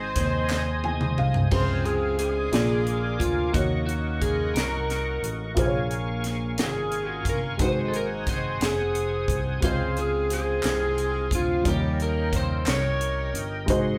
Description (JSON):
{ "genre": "slow gospel", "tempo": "59 BPM (dotted quarters)", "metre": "6/8", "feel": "straight", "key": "Db major", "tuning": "A4 = 440 Hz", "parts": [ { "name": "warm horn section", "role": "melody", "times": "0.0-13.7 s", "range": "F3 to Db5", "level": "-36 LUFS", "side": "equal", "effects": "none" }, { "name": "dark upright piano", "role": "accompaniment", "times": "0.0-14.0 s", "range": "Ab2 to Ab5", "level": "-33 LUFS", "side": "equal", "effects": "none" }, { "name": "bright tonewheel organ", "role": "sustained chords", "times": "0.0-14.0 s", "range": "C4 to Eb6", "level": "-36 LUFS", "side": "equal", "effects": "fast rotary speaker, overdrive, chorus vibrato" }, { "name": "fingered electric bass", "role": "bass", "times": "0.0-14.0 s", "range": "F1 to Eb2", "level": "-32 LUFS", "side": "equal", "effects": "none" }, { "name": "crisp fusion drum kit", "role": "drums", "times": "0.2-13.8 s", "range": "crash cymbal, hi-hat, kick drum, snare drum, toms", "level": "-30 LUFS", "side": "equal", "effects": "none" }, { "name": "group handclap", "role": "percussion", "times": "0.5-0.8, 10.6-13.0 s", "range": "none", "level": "-37 LUFS", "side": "equal", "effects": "none" }, { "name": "electric slide guitar", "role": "melody", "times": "1.5-13.4 s", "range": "F4 to Db5", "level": "-31 LUFS", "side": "equal", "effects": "none" } ], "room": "wet studio reverb, RT60 0.6 s", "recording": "band playing live in one room", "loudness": "-25 LUFS", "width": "mono", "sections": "0.0-1.5 A section; 1.5-14.0 B section", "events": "drum fill 0.5-1.5; upright piano fill 0.5-1.5", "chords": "0.0 Ab; 1.5 Dbmaj7; 2.5 Bb7; 3.5 Ebm7; 5.6 Bbm7; 7.6 Ab7; 9.6 Dbmaj7; 11.7 Eb7" }